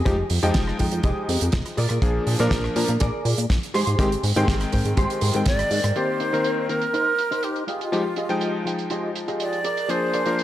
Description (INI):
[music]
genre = nu-disco, nu disco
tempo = 122 BPM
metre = 4/4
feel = straight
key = C minor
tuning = A4 = 440 Hz
[part]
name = clean electric guitar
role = riff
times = 0.0-10.4 s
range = Eb4 to Eb5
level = -28 LUFS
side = right 1 dB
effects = ensemble chorus, low-pass filter
[part]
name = chorused synth bass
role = bass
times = 0.0-5.9 s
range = F1 to Bb2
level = -23 LUFS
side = equal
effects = none
[part]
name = clear electric grand piano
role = accompaniment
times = 0.1-10.4 s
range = Eb3 to G5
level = -26 LUFS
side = left 2 dB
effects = analog delay
[part]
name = damped 70s drum kit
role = drums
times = 0.1-10.4 s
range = hi-hat, rim click, snare drum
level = -30 LUFS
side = right 3 dB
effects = low-pass filter on hats, studio reverb, low-pass filter on snare, low-pass filter on room
[part]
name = kick drum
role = drums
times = 0.1-5.6 s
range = none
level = -22 LUFS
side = equal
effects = studio reverb
[part]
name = breathy concert flute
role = melody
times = 5.5-10.4 s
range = F4 to D5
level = -24 LUFS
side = right 1 dB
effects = analog delay
[sound]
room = moderate echo chamber reverb, RT60 1.8 s, small room ambience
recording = dry, gritty hardware recording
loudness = -20 LUFS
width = side -13 dB against mid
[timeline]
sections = 0.0-6.0 A section; 6.0-10.4 B section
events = filter sweep on clean electric guitar 6.0-10.4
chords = 0.0 Fm9; 1.8 Bb7; 3.7 Abmaj7; 6.0 Cm7; 7.7 Fm9; 9.6 Bb7